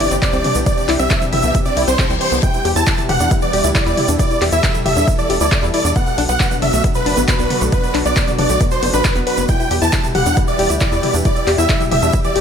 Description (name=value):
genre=uplifting trance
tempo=136 BPM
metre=4/4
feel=straight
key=E minor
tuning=A4 = 440 Hz
part: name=big supersaw lead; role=melody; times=0.0-12.4 s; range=B4 to A5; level=-19 LUFS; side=right 1 dB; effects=sidechain pumping, tape echo
part: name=lush unison pad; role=sustained chords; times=0.0-12.4 s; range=B2 to A4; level=-24 LUFS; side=equal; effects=chorus, sidechain pumping
part: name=wide unison pluck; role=arpeggios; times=0.0-12.4 s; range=B2 to B4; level=-22 LUFS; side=left 4 dB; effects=sidechain pumping, digital delay
part: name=tight sequencer bass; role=bass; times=0.0-12.4 s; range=E1 to E2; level=-20 LUFS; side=equal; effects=sidechain pumping
part: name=big-room dance drum kit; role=drums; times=0.0-12.4 s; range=handclaps, hi-hat, toms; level=-22 LUFS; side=left 1 dB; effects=sidechain pumping on hats, sidechain pumping on toms
part: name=egg shaker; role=percussion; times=0.1-12.3 s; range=none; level=-29 LUFS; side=right 6 dB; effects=none
part: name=electronic kick drum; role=drums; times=0.2-12.2 s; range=none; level=-18 LUFS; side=equal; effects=none
part: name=reverse cymbal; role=sound effects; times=1.7-2.4 s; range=none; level=-29 LUFS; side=left 7 dB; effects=none
room=digital ambience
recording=none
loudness=-13 LUFS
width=side -7 dB against mid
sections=0.0-12.4 A section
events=reverse cymbal 1.7-2.4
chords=0.0 Cadd9; 2.4 Em; 6.0 Bm; 9.5 Em